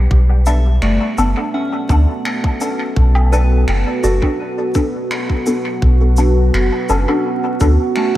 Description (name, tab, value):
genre	ambient dub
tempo	84 BPM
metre	4/4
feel	straight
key	B minor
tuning	A4 = 442 Hz
part	deep dark ambient pad	sustained chords	0.0-8.2 s	B3 to B4	-21 LUFS	right 2 dB	chorus, built-in reverb
part	soft synth bell	arpeggios	0.0-8.2 s	A3 to A5	-24 LUFS	equal	chorus, phaser, tape echo
part	soft dub sub bass	bass	0.0-7.8 s	F#1 to D2	-12 LUFS	equal	tube saturation
part	electronic kick drum	drums	0.1-8.2 s	none	-17 LUFS	equal	none
part	filtered dub chord stab	stabs	0.5-7.8 s	B3 to A4	-22 LUFS	left 2 dB	phaser, ensemble chorus, dub echo
part	cabasa, finger snaps and woodblock	drums	0.5-8.1 s	none	-26 LUFS	equal	dub echo
room	light reverb, small room reverb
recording	vinyl crackle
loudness	-13 LUFS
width	side -14 dB against mid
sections	0.1-8.2 A section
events	none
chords	0.1 Bm7